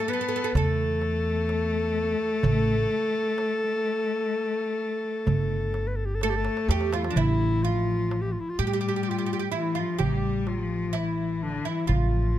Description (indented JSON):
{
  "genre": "Turkish makam ensemble",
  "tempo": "127 BPM (eighths)",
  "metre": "10/8",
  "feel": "straight",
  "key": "unclear",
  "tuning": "A4 = 441 Hz",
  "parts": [
    { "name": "mellow clarinet", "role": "melody", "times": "0.0-12.4 s", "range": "D4 to B4", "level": "-29 LUFS", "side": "left 1 dB", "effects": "none" },
    { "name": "oud", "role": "second line", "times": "0.0-12.4 s", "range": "D4 to A4", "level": "-32 LUFS", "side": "right 8 dB", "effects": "none" },
    { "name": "warm cello", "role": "second line", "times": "0.0-12.4 s", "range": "D3 to B3", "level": "-31 LUFS", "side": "left 5 dB", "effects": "none" },
    { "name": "upright bass", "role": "bass", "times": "0.6-12.4 s", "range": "G1 to A2", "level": "-27 LUFS", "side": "equal", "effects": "none" },
    { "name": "darbuka", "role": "percussion", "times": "0.6-12.1 s", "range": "none", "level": "-30 LUFS", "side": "right 4 dB", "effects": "none" }
  ],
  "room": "little or no reverb",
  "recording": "close, detailed microphones",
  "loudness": "-24 LUFS",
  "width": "side -12 dB against mid",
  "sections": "0.0-7.2 A section; 7.2-12.4 B section",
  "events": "drum fill 6.2-7.2",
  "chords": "none",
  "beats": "0.08 0.55 1.02 1.50 1.97 | 2.44 2.91 3.39 3.86 4.33 4.80 5.28 5.75 6.22 6.69 | 7.17 7.64 8.11 8.59 9.06 9.53 10.01 10.48 10.95 11.43 | 11.90 12.37"
}